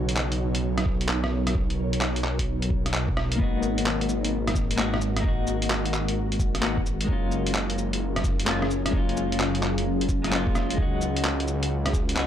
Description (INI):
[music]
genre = future garage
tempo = 130 BPM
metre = 4/4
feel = swing 65% on 16ths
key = G# dorian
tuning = A4 = 440 Hz
[part]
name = ethereal airy pad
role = sustained chords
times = 0.0-12.3 s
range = B2 to C#5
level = -30 LUFS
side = equal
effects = ensemble chorus, built-in reverb, sidechain pumping
[part]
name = swelling detuned saw bass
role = bass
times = 0.0-12.3 s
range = F#1 to C#2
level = -28 LUFS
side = equal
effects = sidechain pumping
[part]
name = lo-fi sampler-style drum kit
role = drums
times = 0.1-12.3 s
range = cabasa, handclaps, hi-hat, rim click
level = -28 LUFS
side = equal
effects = none
[part]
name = electronic kick drum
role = drums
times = 0.9-12.1 s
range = none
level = -26 LUFS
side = equal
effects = none
[part]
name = clean electric guitar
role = accompaniment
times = 3.4-12.3 s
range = G#3 to F#4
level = -30 LUFS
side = left 4 dB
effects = tremolo, sidechain pumping, analog delay
[sound]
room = light reverb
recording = dry, gritty hardware recording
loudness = -23 LUFS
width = side -10 dB against mid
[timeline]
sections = 0.0-12.3 A section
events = none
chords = 0.0 Bmaj9; 3.4 G#m9; 7.1 F#maj7; 10.8 C#7sus4